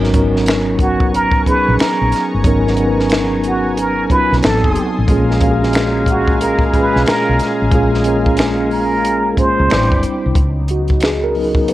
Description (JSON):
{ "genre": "R&B, neo-soul", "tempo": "91 BPM", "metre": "4/4", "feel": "swing 62% on 16ths", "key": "unclear", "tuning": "A4 = 440 Hz", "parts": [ { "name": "mellow tine electric piano", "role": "accompaniment", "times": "0.0-11.7 s", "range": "Bb2 to F5", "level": "-17 LUFS", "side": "equal", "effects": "medium stereo tremolo" }, { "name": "lush unison pad", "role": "sustained chords", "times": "0.0-11.7 s", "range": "Db3 to Eb6", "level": "-26 LUFS", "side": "left 1 dB", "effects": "chorus" }, { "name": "woody fretless electric bass", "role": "bass", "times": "0.0-11.7 s", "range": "F#1 to Db2", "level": "-19 LUFS", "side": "equal", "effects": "ensemble chorus" }, { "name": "compact cocktail drum kit", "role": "drums", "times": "0.0-11.7 s", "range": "finger snaps, hi-hat, kick drum, snare drum", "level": "-17 LUFS", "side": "equal", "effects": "none" }, { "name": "trumpet with plunger mute", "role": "melody", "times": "0.8-10.0 s", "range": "Gb4 to C5", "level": "-17 LUFS", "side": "right 1 dB", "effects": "none" }, { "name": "clear horn section", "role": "stabs", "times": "5.1-10.0 s", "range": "Db3 to F5", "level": "-24 LUFS", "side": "left 2 dB", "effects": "none" } ], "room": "light reverb, studio reverb", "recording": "worn, warbling old tape, cassette tape, warbly pitch drift", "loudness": "-12 LUFS", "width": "side -15 dB against mid", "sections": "0.0-10.4 A section; 10.4-11.7 B section", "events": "tine electric piano solo 10.4-11.7", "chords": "0.0 Abm11; 4.4 Adim7; 5.1 Bbm7; 9.7 Am11; 10.4 Db9sus4" }